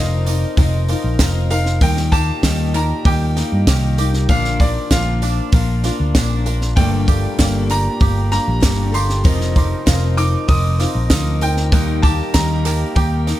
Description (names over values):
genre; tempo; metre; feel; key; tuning
indie folk with a building arrangement; 97 BPM; 4/4; straight; unclear; A4 = 440 Hz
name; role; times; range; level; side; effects
bright upright piano; melody; 0.0-13.4 s; D5 to Eb6; -25 LUFS; equal; analog delay
picked steel-string acoustic guitar; accompaniment; 0.0-13.4 s; G2 to Bb4; -24 LUFS; left 6 dB; analog delay
hand-pumped harmonium; sustained chords; 0.0-13.4 s; Bb2 to Bb4; -30 LUFS; right 1 dB; none
bluegrass banjo; arpeggios; 0.0-13.4 s; A3 to Bb4; -29 LUFS; right 6 dB; analog delay
fingered electric bass; bass; 0.0-13.3 s; F1 to G2; -18 LUFS; equal; none
compact cocktail drum kit; drums; 0.3-13.4 s; hi-hat, kick drum, snare drum; -18 LUFS; equal; none
tambourine; percussion; 0.3-13.4 s; none; -34 LUFS; right 9 dB; analog delay
group handclap; percussion; 1.2-12.8 s; none; -33 LUFS; right 6 dB; none
clear baby grand piano; accompaniment; 6.8-13.4 s; F1 to Eb5; -32 LUFS; right 4 dB; none
room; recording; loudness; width
little or no reverb; echo-heavy mix; -14 LUFS; side -14 dB against mid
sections
0.0-13.4 A section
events
none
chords
0.0 F7sus4; 1.8 Eb; 4.3 Bb; 6.8 Gmadd9; 9.3 F7sus4; 11.7 Eb